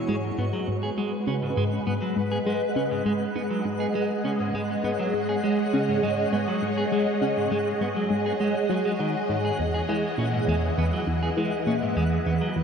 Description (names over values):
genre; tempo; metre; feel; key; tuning
ambient, sequencer-driven space music; 101 BPM; 4/4; straight; G# minor; A4 = 440 Hz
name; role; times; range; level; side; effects
phased string machine; sustained chords; 0.0-12.6 s; E3 to D#5; -26 LUFS; equal; ensemble chorus, phaser
twinkling granular texture; texture; 0.0-12.6 s; F#5; -36 LUFS; left 2 dB; built-in reverb
clean electric guitar; arpeggios; 0.1-12.6 s; G#2 to G#4; -30 LUFS; right 1 dB; auto-pan, analog delay
tight sequenced synth; riff; 0.1-12.6 s; E2 to G#3; -28 LUFS; equal; chorus, phaser, analog delay
room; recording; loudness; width
wet lush hall reverb, RT60 3.3 s; none; -23 LUFS; side -6 dB against mid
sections
0.0-12.6 A section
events
filter sweep on synth arpeggio sound 0.0-12.6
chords
0.1 G#m; 9.6 Emaj7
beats
| 0.09 0.68 1.28 1.87 | 2.46 3.06 3.65 4.25 | 4.84 5.43 6.03 6.62 | 7.22 7.81 8.40 9.00 | 9.59 10.19 10.78 11.38 | 11.97 12.56